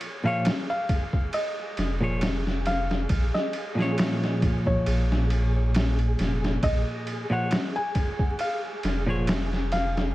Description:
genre	trip hop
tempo	68 BPM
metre	4/4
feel	swing 54% on 16ths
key	Bb minor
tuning	A4 = 437 Hz
part	felt-muted upright piano	melody	0.0-10.1 s	Db5 to Ab5	-32 LUFS	left 1 dB	dub echo
part	trip hop sampler-style drum kit	drums	0.0-10.1 s	kick drum, ride cymbal, snare drum	-28 LUFS	equal	overdrive, vintage 12-bit sampler grit
part	flickering grainy texture	texture	0.1-10.1 s	Ab4	-37 LUFS	right 2 dB	built-in reverb
part	semi-hollow electric guitar	accompaniment	0.2-9.3 s	Bb2 to Db5	-28 LUFS	equal	harmonic tremolo
part	warm sub bass	bass	1.8-10.1 s	F1 to Bb1	-26 LUFS	equal	none
room	digital ambience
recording	vinyl crackle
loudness	-23 LUFS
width	side -16 dB against mid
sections	0.0-10.1 A section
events	none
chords	0.0 Bbm7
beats	0.45 1.33 2.22 | 3.10 3.98 4.86 5.75 | 6.63 7.51 8.39 9.28

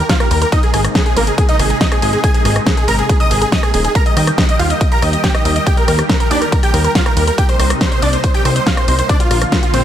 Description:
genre	uplifting trance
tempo	140 BPM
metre	4/4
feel	straight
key	Eb major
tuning	A4 = 440 Hz
part	supersaw chords	melody	0.0-9.8 s	Bb3 to Eb6	-18 LUFS	right 1 dB	sidechain pumping, dub echo
part	analog pluck	second line	0.0-9.8 s	F4 to Eb6	-24 LUFS	left 1 dB	chorus, sidechain pumping, dub echo
part	analog string pad	sustained chords	0.0-9.8 s	C3 to G4	-21 LUFS	equal	ensemble chorus, sidechain pumping
part	plucky analog bass	bass	0.0-9.8 s	Eb1 to Eb2	-16 LUFS	equal	sidechain pumping
part	big-room dance drum kit	drums	0.1-9.8 s	hi-hat, ride cymbal, rim click, snare drum	-20 LUFS	equal	none
part	electronic kick drum	drums	0.1-9.6 s	none	-15 LUFS	equal	none
room	light reverb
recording	none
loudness	-11 LUFS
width	side -10 dB against mid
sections	0.0-9.8 A section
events	none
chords	0.0 Eb; 0.5 Abadd9; 4.0 Eb; 7.4 Cm7; 9.1 Bb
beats	0.09 | 0.52 0.95 1.38 1.81 | 2.24 2.67 3.09 3.52 | 3.95 4.38 4.81 5.24 | 5.67 6.09 6.52 6.95 | 7.38 7.81 8.24 8.67 | 9.09 9.52

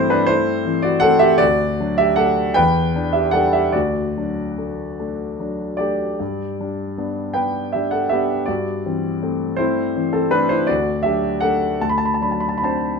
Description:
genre	classical, romantic nocturne for solo piano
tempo	46-56 BPM (dotted quarters)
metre	6/8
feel	rubato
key	unclear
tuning	A4 = 441 Hz
part	warm grand piano	solo	0.0-13.0 s	D2 to B5	-17 LUFS	equal	none
room	light reverb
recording	minimal, uncompressed stereo recording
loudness	-17 LUFS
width	side -5 dB against mid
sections	0.0-13.0 A section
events	none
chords	0.0 Am/G; 1.4 D; 2.6 Em7; 3.7 D; 6.2 G; 8.5 Am/G; 10.7 D; 11.8 D7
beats	0.29 | 1.40 2.56 | 3.75 4.99 | 6.20 7.36 | 8.48 9.59 | 10.69 11.81

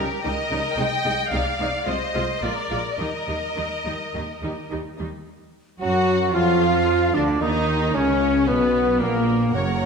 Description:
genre	classical, dramatic, fast romantic movement for symphony orchestra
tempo	104-114 BPM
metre	4/4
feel	straight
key	Eb major, Eb minor from 5.3 s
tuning	A4 = 439 Hz
part	rich studio violin section	melody	0.0-9.5 s	Bb4 to G5	-28 LUFS	left 2 dB	none
part	clear studio violin section	second line	0.0-9.9 s	Bb3 to Bb5	-30 LUFS	left 2 dB	none
part	rich symphonic viola section	accompaniment	0.0-9.9 s	G3 to Db5	-29 LUFS	right 1 dB	none
part	clear symphonic double bass section	bass	0.0-9.9 s	Gb1 to Gb2	-30 LUFS	right 3 dB	none
part	rich symphonic cello section	bass	0.0-9.9 s	Gb2 to Gb3	-31 LUFS	right 3 dB	none
part	concert flute	second line	5.8-9.5 s	Bb4 to Gb5	-29 LUFS	left 5 dB	none
part	warm clarinet	second line	5.8-9.9 s	Bb3 to Db5	-30 LUFS	right 1 dB	none
part	warm cor anglais	second line	5.8-9.9 s	Bb3 to Gb5	-28 LUFS	right 2 dB	none
part	mellow bassoon	accompaniment	5.8-9.9 s	Bb2 to Gb3	-29 LUFS	right 2 dB	none
part	mellow French horn section	sustained chords	5.8-9.5 s	Bb3 to Gb4	-23 LUFS	left 4 dB	none
part	warm trombone section	sustained chords	5.8-9.7 s	Bb2 to Gb3	-30 LUFS	right 3 dB	none
part	mellow tuba	bass	5.8-9.9 s	Gb1 to Gb2	-29 LUFS	right 4 dB	none
room	wet scoring stage reverb, RT60 1.8 s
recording	none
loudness	-19 LUFS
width	side -5 dB against mid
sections	0.0-5.3 A section; 5.3-9.9 B section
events	none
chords	0.0 Eb7; 0.8 Ab/C; 1.9 Fm7/C; 2.4 Bb7; 3.0 Eb; 5.3 N.C.; 6.3 Dm; 7.4 Eb5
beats	0.24 | 0.78 1.32 1.87 2.42 | 2.99 3.57 4.14 4.71 | 5.28 5.82 6.35 6.88 | 7.42 7.95 8.48 9.01 | 9.55

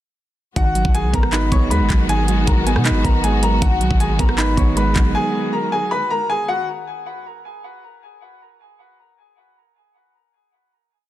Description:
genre	hip hop, trap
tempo	157 BPM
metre	4/4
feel	half-time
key	G# minor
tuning	A4 = 440 Hz
part	clear baby grand piano	melody	0.6-6.7 s	F#4 to C#6	-22 LUFS	left 1 dB	ping-pong delay
part	soft electric-piano-like synth keys	accompaniment	0.6-5.9 s	D#3 to D#4	-22 LUFS	right 4 dB	chorus
part	warm symphonic string section	sustained chords	0.6-6.6 s	D#3 to F#4	-27 LUFS	left 3 dB	none
part	warm 808-style bass	bass	0.6-5.1 s	G#1 to B2	-20 LUFS	equal	none
part	trap drum kit	drums	0.6-5.0 s	handclaps, hi-hat, kick drum, rim click	-19 LUFS	equal	vintage 12-bit sampler grit
room	digital ambience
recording	dense, heavily limited modern master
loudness	-15 LUFS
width	side -14 dB against mid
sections	0.6-6.7 hook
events	none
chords	0.6 G#m7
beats	| 0.56 0.94 1.33 1.71 | 2.09 2.47 2.85 3.24 | 3.62 4.00 4.38 4.77 | 5.15 5.53 5.91 6.29

